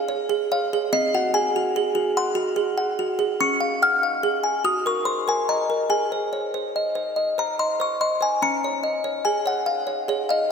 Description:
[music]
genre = classical, lullaby for music box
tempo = 48 BPM (dotted quarters)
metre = 6/8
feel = straight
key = Db major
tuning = A4 = 440 Hz
[part]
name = music box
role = solo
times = 0.0-10.5 s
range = C4 to F6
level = -20 LUFS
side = equal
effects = none
[sound]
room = wet lush hall reverb, RT60 2.9 s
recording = dreamy mix soaked in reverb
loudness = -20 LUFS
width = side -6 dB against mid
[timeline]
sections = 0.0-10.5 A section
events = none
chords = 0.0 Db; 0.9 Ab7/C; 3.4 Db; 4.6 Ebm/Gb; 5.9 Ab; 8.4 Db

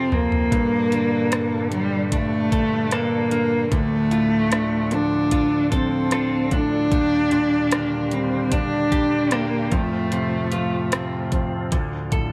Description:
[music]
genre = pop ballad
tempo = 75 BPM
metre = 4/4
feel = straight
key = G minor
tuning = A4 = 442 Hz
[part]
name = warm cello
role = melody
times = 0.0-11.3 s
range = G3 to D4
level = -23 LUFS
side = equal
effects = slapback echo
[part]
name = clear concert grand piano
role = accompaniment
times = 0.0-12.3 s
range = D2 to G3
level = -30 LUFS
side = equal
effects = none
[part]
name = direct-recorded clean electric guitar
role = arpeggios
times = 0.0-12.3 s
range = G2 to A4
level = -32 LUFS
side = equal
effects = lush chorus
[part]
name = smooth R&B drum kit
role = drums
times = 0.1-12.3 s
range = hi-hat, kick drum, rim click, toms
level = -27 LUFS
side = equal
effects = none
[part]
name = bright tonewheel organ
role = sustained chords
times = 0.5-12.3 s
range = A2 to A4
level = -32 LUFS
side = equal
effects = chorus vibrato, slow rotary speaker
[sound]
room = light reverb, digital ambience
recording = none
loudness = -21 LUFS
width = mono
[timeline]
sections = 0.0-12.3 A section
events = drum fill 0.0-0.5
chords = 0.0 F; 0.5 Gmadd9; 3.7 Dm; 6.9 Ebmaj7; 9.7 F; 11.7 Dm

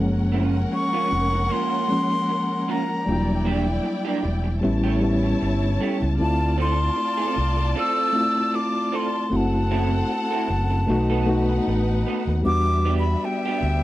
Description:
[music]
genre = soul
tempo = 77 BPM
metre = 4/4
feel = swing 54% on 16ths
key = unclear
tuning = A4 = 440 Hz
[part]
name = warm studio string section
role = second line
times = 0.0-13.8 s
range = G3 to A5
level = -30 LUFS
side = left 1 dB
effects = none
[part]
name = mellow reed electric piano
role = accompaniment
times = 0.0-13.8 s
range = E#3 to F#4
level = -25 LUFS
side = left 1 dB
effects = fast tremolo
[part]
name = overdriven fingered electric bass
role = bass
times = 0.0-13.8 s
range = E1 to E2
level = -23 LUFS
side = equal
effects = none
[part]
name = electric guitar through a small old amp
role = riff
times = 0.3-13.7 s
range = A3 to A4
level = -30 LUFS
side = right 7 dB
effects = lush chorus
[part]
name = breathy silver concert flute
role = melody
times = 0.7-13.8 s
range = G5 to E6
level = -25 LUFS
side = left 1 dB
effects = none
[sound]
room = little or no reverb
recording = dry, close 1970s-style studio recording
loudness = -20 LUFS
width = side -15 dB against mid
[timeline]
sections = 0.0-13.8 A section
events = none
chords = 0.0 F#maj7; 3.1 Em7b5; 4.6 A7; 6.2 Dm7; 9.3 F#m7b5; 10.9 B7; 12.5 Em7

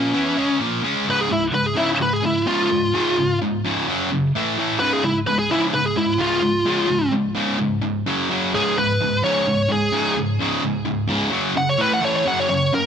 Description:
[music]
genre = metal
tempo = 129 BPM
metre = 4/4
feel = straight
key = unclear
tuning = A4 = 440 Hz
[part]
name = high-gain lead guitar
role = melody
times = 0.0-12.9 s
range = C#4 to F#5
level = -20 LUFS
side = equal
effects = distortion, digital delay
[part]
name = distorted electric guitar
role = riff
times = 0.0-12.9 s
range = C#2 to E4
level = -20 LUFS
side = equal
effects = distortion
[sound]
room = light reverb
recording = none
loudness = -18 LUFS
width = side -8 dB against mid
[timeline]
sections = 0.0-1.1 A section; 1.1-12.9 B section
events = lead electric guitar solo 1.1-12.9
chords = 0.0 N.C.; 1.1 C#; 3.9 F#5; 4.3 A5; 4.8 C#; 8.1 F#5; 8.5 C#5; 11.3 F#5; 11.8 A5; 12.3 F#5

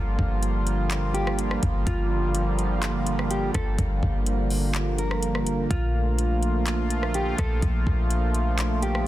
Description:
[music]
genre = hip hop, atmospheric cloud-rap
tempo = 125 BPM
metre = 4/4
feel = half-time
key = G minor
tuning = A4 = 439 Hz
[part]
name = sweeping resonant pad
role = sustained chords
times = 0.0-9.1 s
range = D3 to F4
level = -27 LUFS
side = right 2 dB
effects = chorus, sidechain pumping
[part]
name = warm 808-style bass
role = bass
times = 0.0-9.1 s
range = G1 to Bb1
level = -25 LUFS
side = equal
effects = none
[part]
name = smooth R&B drum kit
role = drums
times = 0.2-9.1 s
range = handclaps, hi-hat, kick drum, rim click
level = -30 LUFS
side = equal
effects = soft clipping on snare
[part]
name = mellow electric guitar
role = melody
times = 1.1-9.1 s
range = F4 to Bb4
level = -33 LUFS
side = equal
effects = tape echo
[sound]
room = digital ambience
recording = dense, heavily limited modern master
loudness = -22 LUFS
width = side -14 dB against mid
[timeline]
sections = 0.0-9.1 A section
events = none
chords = 0.0 Gm7; 5.7 Bbmaj7

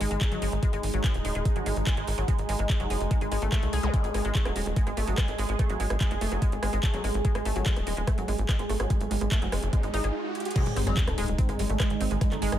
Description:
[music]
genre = psychedelic trance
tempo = 145 BPM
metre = 4/4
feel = straight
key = unclear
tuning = A4 = 438 Hz
[part]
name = bubbling stepped-filter texture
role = sustained chords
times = 0.0-12.6 s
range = G#3 to G#4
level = -34 LUFS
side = right 2 dB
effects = chorus, built-in reverb, sidechain pumping
[part]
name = wide unison pluck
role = riff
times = 0.0-12.5 s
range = F#3 to G#4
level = -33 LUFS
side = moving between left 5 dB and right 5 dB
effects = auto-pan, sidechain pumping, tape echo
[part]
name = tight sequencer bass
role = bass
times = 0.0-12.6 s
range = D#1 to B#1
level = -30 LUFS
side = equal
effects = tube saturation
[part]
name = garage drum kit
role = drums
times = 0.0-12.6 s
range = crash cymbal, handclaps, hi-hat, rim click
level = -35 LUFS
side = right 1 dB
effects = overdrive
[part]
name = electronic kick drum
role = drums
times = 0.2-12.3 s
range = none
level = -26 LUFS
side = equal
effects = overdrive
[part]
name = zap, riser and sub drop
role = sound effects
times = 3.8-3.9, 8.7-12.2 s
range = none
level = -36 LUFS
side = right 1 dB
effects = none
[part]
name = oud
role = melody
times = 10.6-12.6 s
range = G#2 to G#3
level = -34 LUFS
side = right 1 dB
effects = phaser, sidechain pumping, tape echo
[sound]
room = light reverb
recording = none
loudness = -24 LUFS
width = side -11 dB against mid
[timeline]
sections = 0.0-10.6 A section; 10.6-12.6 B section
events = riser 8.7-10.6; stop 10.1-10.6; drum fill 10.4; drop 10.6-12.6; impact 10.6-12.2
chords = 0.0 G#5

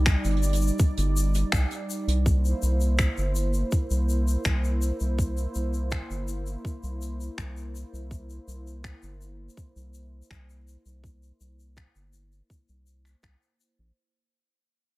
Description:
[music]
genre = folktronica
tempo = 82 BPM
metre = 4/4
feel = straight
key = unclear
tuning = A4 = 440 Hz
[part]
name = warm analog pad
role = sustained chords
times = 0.0-13.9 s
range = G3 to D5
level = -34 LUFS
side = right 2 dB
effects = lush chorus
[part]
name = round analog bass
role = bass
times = 0.0-13.9 s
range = G1 to C2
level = -26 LUFS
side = equal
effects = none
[part]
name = electronic kick drum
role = drums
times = 0.1-13.4 s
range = none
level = -25 LUFS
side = equal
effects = none
[part]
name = soft brush drum kit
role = drums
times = 0.1-13.7 s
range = finger snaps, hi-hat, shaker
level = -33 LUFS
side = left 1 dB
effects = none
[sound]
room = little or no reverb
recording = none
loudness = -24 LUFS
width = side -19 dB against mid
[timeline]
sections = 0.0-14.0 A section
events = fade-out 0.0-14.0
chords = 0.0 Cm; 2.3 C7

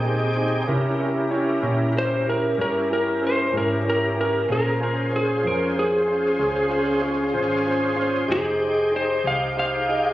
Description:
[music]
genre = blues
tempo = 63 BPM (dotted quarters)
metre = 12/8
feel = straight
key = F minor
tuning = A4 = 444 Hz
[part]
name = warm concert grand piano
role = accompaniment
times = 0.0-10.1 s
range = C4 to Eb5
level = -25 LUFS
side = right 1 dB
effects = none
[part]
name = overdriven tonewheel organ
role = sustained chords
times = 0.0-10.1 s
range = C4 to G5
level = -27 LUFS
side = left 1 dB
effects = slow rotary speaker, chorus vibrato
[part]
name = hollow-body short-scale fingered electric bass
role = bass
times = 0.0-10.1 s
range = F1 to C3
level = -29 LUFS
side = equal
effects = none
[part]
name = electric slide guitar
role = melody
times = 2.0-10.1 s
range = Ab4 to F5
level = -22 LUFS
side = equal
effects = none
[sound]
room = light reverb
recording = recorded on a phone in the room, studio reverb, compression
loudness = -20 LUFS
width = side -14 dB against mid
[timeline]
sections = 0.0-10.1 A section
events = none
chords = 0.0 Fm7 (rootless); 0.7 C7b9; 4.5 Bbm7; 8.3 Fm7

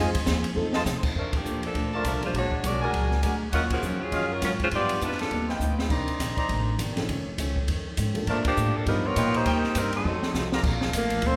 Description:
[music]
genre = jazz, big band swing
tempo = 202 BPM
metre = 4/4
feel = swing 60% on 8ths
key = Bb major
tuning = A4 = 441 Hz
[part]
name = dark baby grand piano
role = accompaniment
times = 0.0-10.2 s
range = Eb3 to Bb4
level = -38 LUFS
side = equal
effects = none
[part]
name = picked plugged-in steel-string acoustic guitar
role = accompaniment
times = 0.0-11.4 s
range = F2 to A4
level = -37 LUFS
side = equal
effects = none
[part]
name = mellow trumpet section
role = stabs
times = 0.0-10.6 s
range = Eb4 to Bb5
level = -34 LUFS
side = equal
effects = none
[part]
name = upright bass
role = bass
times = 0.0-11.4 s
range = F1 to C3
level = -31 LUFS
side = equal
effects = none
[part]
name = open jazz drum kit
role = drums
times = 0.1-11.3 s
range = crash cymbal, hi-hat, kick drum, ride cymbal, snare drum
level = -33 LUFS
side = equal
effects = none
[part]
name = warm saxophone section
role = melody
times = 1.2-5.5, 8.3-10.5 s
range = Db3 to D5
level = -30 LUFS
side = equal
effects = none
[part]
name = clear saxophone section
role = sustained chords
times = 10.6-11.4 s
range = D4 to F5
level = -36 LUFS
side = equal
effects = none
[part]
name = breathy tenor saxophone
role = melody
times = 11.0-11.4 s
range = Bb3 to C4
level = -28 LUFS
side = equal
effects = none
[sound]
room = wet recital hall reverb, RT60 1.5 s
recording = recorded in a church or concert hall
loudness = -26 LUFS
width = mono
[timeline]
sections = 0.0-1.2 A section; 1.2-10.6 B section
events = drum fill 0.6, 5.6, 10.1-10.6; band accent 1.3, 3.7, 8.4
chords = 0.0 Fm7; 0.6 F7; 1.2 Bbmaj7; 2.3 Bb7alt; 3.5 Ebm9; 4.7 G7b13; 5.9 Cm9; 7.1 F7alt; 8.3 Bbmaj7; 8.9 G7alt; 9.5 Cm7; 10.1 F7b9; 10.6 Bbmaj7

